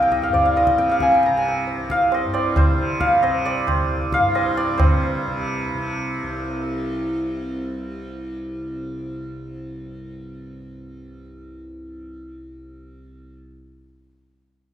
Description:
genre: indian classical, Hindustani.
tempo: 135 BPM.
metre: 4/4.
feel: straight.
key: C raga darbari.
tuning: A4 = 440 Hz.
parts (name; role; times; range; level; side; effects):
santur; melody; 0.0-7.9 s; C5 to C6; -20 LUFS; equal; none.
tanpura; drone; 0.0-13.4 s; C2 to C3; -27 LUFS; equal; none.
tabla; percussion; 0.1-5.0 s; none; -23 LUFS; right 1 dB; none.
room: wet recital hall reverb, RT60 1.4 s.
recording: recorded in a church or concert hall.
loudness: -19 LUFS.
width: side -10 dB against mid.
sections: 0.0-4.8 A section; 4.8-6.6 B section.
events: none.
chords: none.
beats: 0.34 0.79 | 1.24 1.69 2.13 2.58 | 3.03 3.47 3.92 4.36 | 4.80 5.24 5.68 6.12.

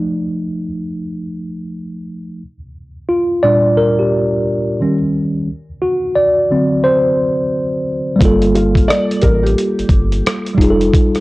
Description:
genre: lo-fi hip hop.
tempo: 88 BPM.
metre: 4/4.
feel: swing 63% on 16ths.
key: unclear.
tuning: A4 = 438 Hz.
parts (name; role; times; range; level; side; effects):
mellow tine electric piano; accompaniment; 0.0-11.2 s; Bb2 to D5; -14 LUFS; equal; medium stereo tremolo, low-pass filter.
soft dub sub bass; bass; 8.2-10.9 s; F1 to A1; -17 LUFS; equal; none.
dusty soul sampler-style drum kit; drums; 8.2-11.2 s; hi-hat, kick drum, rim click; -14 LUFS; equal; none.
felt-muted upright piano; melody; 8.5-10.4 s; F4 to D5; -19 LUFS; equal; low-pass filter.
room: light reverb.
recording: dry, gritty hardware recording, cassette tape.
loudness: -13 LUFS.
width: side -20 dB against mid.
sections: 0.0-8.2 A section; 8.2-11.2 B section.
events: tine electric piano solo 0.0-8.2.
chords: 0.0 F7; 2.4 Bb6; 4.8 Eb7; 5.5 D7; 8.2 Gm9; 10.6 F9.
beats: | 0.02 0.70 1.39 2.07 | 2.75 3.43 4.11 4.80 | 5.48 6.16 6.84 7.52 | 8.21 8.89 9.57 10.25 | 10.93.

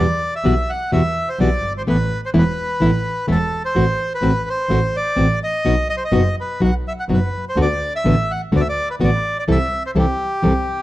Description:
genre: tango.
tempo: 126 BPM.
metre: 4/4.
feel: rubato.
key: unclear.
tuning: A4 = 440 Hz.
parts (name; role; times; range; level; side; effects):
bandoneon; melody; 0.0-10.8 s; G4 to F#5; -21 LUFS; equal; analog delay.
nylon-string guitar; accompaniment; 0.0-10.5 s; B2 to A4; -19 LUFS; left 2 dB; none.
clear double bass; bass; 0.0-10.6 s; E1 to E2; -20 LUFS; right 2 dB; none.
room: light reverb.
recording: close, detailed microphones.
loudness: -16 LUFS.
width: side -16 dB against mid.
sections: 0.0-10.8 A section.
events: none.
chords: 0.0 Emadd9; 1.9 Asus2; 3.8 F#dim/A; 5.7 B; 7.6 D6; 9.5 Am7/C.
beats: 0.45 0.92 1.40 | 1.87 2.34 2.81 3.28 | 3.75 4.23 4.70 5.17 | 5.65 6.13 6.61 7.09 | 7.58 8.06 8.54 9.01 | 9.49 9.96 10.44.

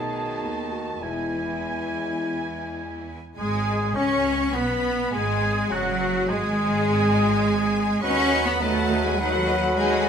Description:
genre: classical.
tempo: 103 BPM.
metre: 4/4.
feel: straight.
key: unclear.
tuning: A4 = 439 Hz.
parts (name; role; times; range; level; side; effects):
warm symphonic violin section; melody; 0.0-10.1 s; G#3 to A5; -33 LUFS; left 3 dB; none.
clear symphonic violin section; second line; 0.0-10.1 s; D#4 to C#6; -32 LUFS; left 2 dB; none.
mellow clarinet; second line; 0.0-10.1 s; F#3 to G#4; -34 LUFS; left 2 dB; none.
warm oboe; second line; 0.0-10.1 s; B3 to A5; -32 LUFS; right 2 dB; none.
clear bassoon; accompaniment; 0.0-10.1 s; D#3 to C#4; -30 LUFS; right 1 dB; none.
rich symphonic viola section; accompaniment; 0.0-10.1 s; F#3 to B4; -33 LUFS; right 2 dB; none.
mellow French horn section; sustained chords; 0.0-10.1 s; F#3 to E4; -29 LUFS; left 3 dB; none.
clear symphonic double bass section; bass; 0.0-10.1 s; E1 to D#2; -30 LUFS; right 2 dB; none.
rich symphonic cello section; bass; 0.0-10.1 s; D#2 to C#4; -28 LUFS; right 2 dB; none.
bright silver concert flute; second line; 3.4-10.1 s; C#4 to B5; -32 LUFS; left 2 dB; none.
room: wet recital hall reverb, RT60 1.7 s.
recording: minimal, uncompressed stereo recording.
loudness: -21 LUFS.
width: side -7 dB against mid.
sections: 0.0-3.4 A section; 3.4-10.1 B section.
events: none.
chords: 0.0 B7; 1.0 E; 3.4 G#madd11; 5.7 F#sus2; 8.0 B7/D#.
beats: 0.43 | 1.02 1.61 2.20 2.79 | 3.38 3.96 4.55 5.13 | 5.71 6.30 6.88 7.46 | 8.04 8.62 9.19 9.77.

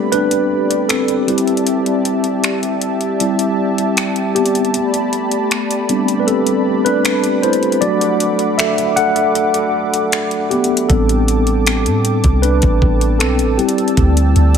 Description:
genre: contemporary R&B.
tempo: 78 BPM.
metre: 4/4.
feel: straight.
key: A dorian.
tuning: A4 = 440 Hz.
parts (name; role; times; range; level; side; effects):
mellow tine electric piano; accompaniment; 0.0-14.6 s; F#3 to F#5; -15 LUFS; left 1 dB; medium stereo tremolo, tape echo.
warm analog pad; sustained chords; 0.0-14.6 s; A3 to E6; -22 LUFS; equal; chorus.
smooth R&B drum kit; drums; 0.1-14.6 s; finger snaps, hi-hat, kick drum; -19 LUFS; equal; overdrive.
soft 808-style bass; bass; 10.9-14.6 s; A1 to A2; -14 LUFS; equal; none.
room: light reverb, digital ambience.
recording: echo-heavy mix.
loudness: -13 LUFS.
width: side -7 dB against mid.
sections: 0.0-14.6 A section.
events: break 0.0-10.9; tine electric piano solo 0.0-14.6.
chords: 0.0 Am11; 7.8 Bm7; 10.9 Am11; 13.6 D9sus4.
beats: 0.13 0.90 | 1.67 2.44 3.20 3.97 | 4.74 5.51 6.28 7.05 | 7.82 8.59 9.36 10.13 | 10.90 11.67 12.44 13.20 | 13.97.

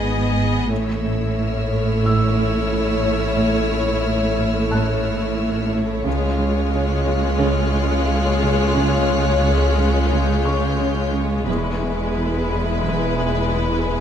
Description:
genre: cinematic, suspense film score.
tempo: 89 BPM.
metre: 4/4.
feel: straight.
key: unclear.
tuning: A4 = 440 Hz.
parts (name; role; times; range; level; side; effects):
rich studio violin section; melody; 0.0-14.0 s; B4 to D#5; -26 LUFS; left 4 dB; none.
warm chamber violin section; second line; 0.0-14.0 s; E4 to G#4; -27 LUFS; left 1 dB; none.
rich chamber viola section; accompaniment; 0.0-14.0 s; G#3 to B3; -25 LUFS; equal; none.
dark symphonic cello section; riff; 0.0-14.0 s; E2 to C#4; -27 LUFS; right 3 dB; none.
rich studio cello section; bass; 0.0-14.0 s; C#2 to A2; -25 LUFS; right 2 dB; none.
warm symphonic double bass section; bass; 0.0-14.0 s; E1 to C#2; -27 LUFS; right 3 dB; none.
sub bass with octave; drone; 0.0-14.0 s; E1 to C#2; -25 LUFS; left 1 dB; none.
felt-muted upright piano; texture; 0.0-14.0 s; A5 to F#6; -33 LUFS; left 1 dB; none.
warm symphonic violin section; texture; 0.0-14.0 s; G#5 to F#6; -33 LUFS; left 3 dB; none.
room: moderate scoring stage reverb, RT60 2.0 s.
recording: none.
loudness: -17 LUFS.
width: side -9 dB against mid.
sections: 0.0-14.0 A section.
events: none.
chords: 0.0 G#m; 0.7 A; 6.1 C#; 11.5 E.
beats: 0.04 | 0.71 1.38 2.05 2.71 | 3.38 4.04 4.72 5.39 | 6.06 6.73 7.40 8.08 | 8.76 9.43 10.11 10.80 | 11.47 12.15 12.84 13.53.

